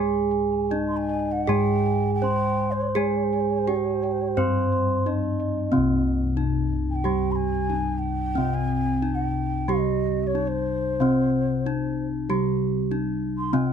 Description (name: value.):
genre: Javanese gamelan.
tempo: 75-100 BPM.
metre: 4/4.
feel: straight.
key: C pelog.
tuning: A4 = 440 Hz.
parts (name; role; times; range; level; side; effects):
gamelan-type bronze metallophone; melody; 0.0-13.7 s; C4 to C5; -26 LUFS; right 2 dB; none.
gamelan-type bronze metallophone; accompaniment; 0.0-13.7 s; C3 to C4; -28 LUFS; left 1 dB; none.
gamelan-type bronze metallophone; arpeggios; 0.0-5.7 s; Eb5-30c to C6; -30 LUFS; right 4 dB; tape echo.
gamelan-type bossed gongs; bass; 0.0-13.7 s; C2 to Ab4-20c; -27 LUFS; left 1 dB; none.
mellow bansuri; second line; 0.9-13.7 s; C5 to C6; -30 LUFS; left 1 dB; none.
room: little or no reverb.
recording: close, detailed microphones.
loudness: -22 LUFS.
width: side -7 dB against mid.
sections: 0.0-5.7 A section; 5.7-13.7 B section.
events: none.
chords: none.